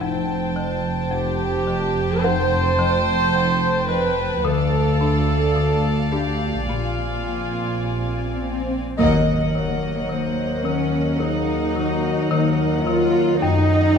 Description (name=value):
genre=cinematic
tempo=54 BPM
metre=4/4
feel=straight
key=Eb minor from 9.0 s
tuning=A4 = 440 Hz
part: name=warm studio violin section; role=melody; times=0.0-14.0 s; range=Gb5 to A5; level=-33 LUFS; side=left 2 dB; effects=none
part: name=warm studio violin section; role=second line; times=0.0-14.0 s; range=C5 to G5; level=-29 LUFS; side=left 2 dB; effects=none
part: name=folk marimba with hard mallets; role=riff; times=0.0-14.0 s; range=F2 to D4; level=-25 LUFS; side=left 6 dB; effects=none
part: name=rich symphonic double bass section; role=bass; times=0.0-14.0 s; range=F1 to Gb2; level=-26 LUFS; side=right 2 dB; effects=none
part: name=warm studio cello section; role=bass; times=0.0-14.0 s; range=D2 to F4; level=-25 LUFS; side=right 3 dB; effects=none
part: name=warm studio viola section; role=accompaniment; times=1.1-14.0 s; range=E#4 to C5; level=-25 LUFS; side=right 2 dB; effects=none
part: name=swell and impact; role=sound effects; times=7.2-13.4 s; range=none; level=-31 LUFS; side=left 1 dB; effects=none
part: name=mellow clarinet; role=second line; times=9.0-14.0 s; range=Gb4 to Eb5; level=-28 LUFS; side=left 2 dB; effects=none
part: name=warm French horn section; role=sustained chords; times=9.0-14.0 s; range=Gb3 to Gb4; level=-27 LUFS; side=left 3 dB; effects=none
room=wet scoring stage reverb, RT60 1.9 s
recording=dark, warm production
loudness=-18 LUFS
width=side -6 dB against mid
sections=0.0-9.0 A section; 9.0-14.0 B section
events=swell 7.2-9.0; band accent 9.0-10.1; impact 9.0-13.4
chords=0.0 Fadd9; 4.4 Dm; 6.7 A#7; 9.0 Ebm; 13.4 Gbm